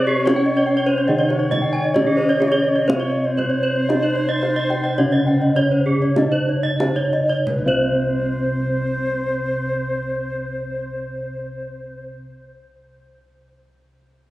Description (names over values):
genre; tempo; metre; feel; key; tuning
Balinese gamelan; 44-77 BPM; 4/4; straight; unclear; A4 = 439 Hz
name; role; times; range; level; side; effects
gamelan-type bronze metallophone; melody; 0.0-12.2 s; C4 to Eb4-30c; -22 LUFS; equal; none
bright reedy bansuri; second line; 0.0-12.0 s; C5 to Eb5; -25 LUFS; left 1 dB; tape echo
gamelan-type bronze metallophone; accompaniment; 0.0-12.2 s; C3 to Eb3-30c; -26 LUFS; equal; none
gamelan-type bronze metallophone; arpeggios; 0.0-12.2 s; Ab4-20c to G5-30c; -25 LUFS; left 1 dB; tape echo
gamelan-type bossed gongs; bass; 0.0-12.2 s; C2 to Db4+20c; -30 LUFS; equal; none
gamelan-type bronze metallophone; arpeggios; 0.1-12.2 s; G4-30c to Ab5-20c; -24 LUFS; right 2 dB; none
kendang; percussion; 0.3-8.1 s; none; -27 LUFS; right 1 dB; none
room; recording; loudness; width
wet recital hall reverb, RT60 1.6 s; recorded on a phone in the room, club ambience; -17 LUFS; side -16 dB against mid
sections
0.0-7.5 A section; 7.5-12.9 B section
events
slowing down 0.0-7.5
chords
none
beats
0.27 1.08 1.96 | 2.89 3.90 4.99 6.17 | 7.47 8.83 10.20 11.56